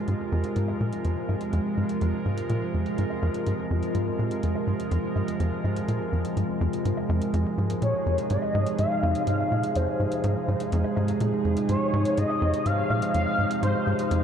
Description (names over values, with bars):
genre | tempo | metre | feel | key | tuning
ambient, sequencer-driven space music | 124 BPM | 4/4 | straight | F minor | A4 = 436 Hz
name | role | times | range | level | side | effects
evolving wavetable pad | sustained chords | 0.0-14.2 s | C3 to Bb4 | -27 LUFS | right 1 dB | chorus, built-in reverb
tight sequencer bass | riff | 0.1-14.2 s | F2 to Bb2 | -27 LUFS | equal | ping-pong delay
electronic hi-hat and woodblock | percussion | 0.1-14.2 s | none | -45 LUFS | equal | ping-pong delay
expressive synth lead | melody | 7.8-14.2 s | C5 to F5 | -27 LUFS | left 1 dB | ensemble chorus, ping-pong delay
room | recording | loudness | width
wet huge ambient reverb, RT60 8.7 s | worn, warbling old tape, cassette tape, warbly pitch drift | -23 LUFS | side -8 dB against mid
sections
0.0-14.2 A section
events
fade-in on drum 0.0-14.2; filter sweep on analog synth bass 0.0-14.2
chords
0.0 Fm